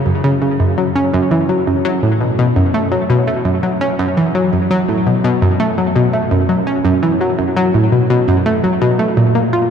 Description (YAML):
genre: ambient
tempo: 84 BPM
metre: 4/4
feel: straight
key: F# minor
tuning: A4 = 440 Hz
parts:
  - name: analog pluck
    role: solo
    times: 0.1-9.7 s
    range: F#2 to E#4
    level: -12 LUFS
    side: equal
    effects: chorus, analog delay
room: wet huge ambient reverb, RT60 7.7 s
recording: dark, warm production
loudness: -12 LUFS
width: side -7 dB against mid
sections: 0.0-9.7 A section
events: none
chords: none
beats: | 0.60 1.31 2.03 2.74 | 3.46 4.17 4.89 5.60 | 6.31 7.03 7.74 8.46 | 9.17